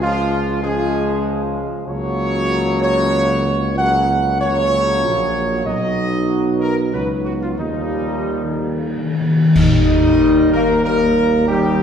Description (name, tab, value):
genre	classical, ceremonial fanfare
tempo	95 BPM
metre	3/4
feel	straight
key	unclear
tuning	A4 = 440 Hz
part	dark trumpet section	melody	0.0-11.8 s	Eb4 to Gb5	-20 LUFS	right 1 dB	none
part	dark French horn section	sustained chords	0.0-11.8 s	G3 to Gb4	-21 LUFS	left 3 dB	none
part	warm trombone section	sustained chords	0.0-11.8 s	Db3 to Ab3	-25 LUFS	right 1 dB	none
part	mellow tuba	bass	0.0-11.8 s	Bb1 to Eb2	-22 LUFS	right 2 dB	none
part	cymbal swell, clash cymbals and concert bass drum	percussion	5.7-10.8 s	none	-22 LUFS	right 1 dB	none
part	timpani	percussion	7.6-10.5 s	Eb3	-18 LUFS	left 2 dB	none
room	wet scoring stage reverb, RT60 1.4 s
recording	heard from further back in the room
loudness	-15 LUFS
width	side -8 dB against mid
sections	0.0-9.6 A section; 9.6-11.8 A section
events	timpani fill 7.6-9.6; band accent 9.6-10.2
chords	0.0 Db; 1.9 Gb/Db; 5.7 B; 7.6 Ebadd9; 9.6 Eb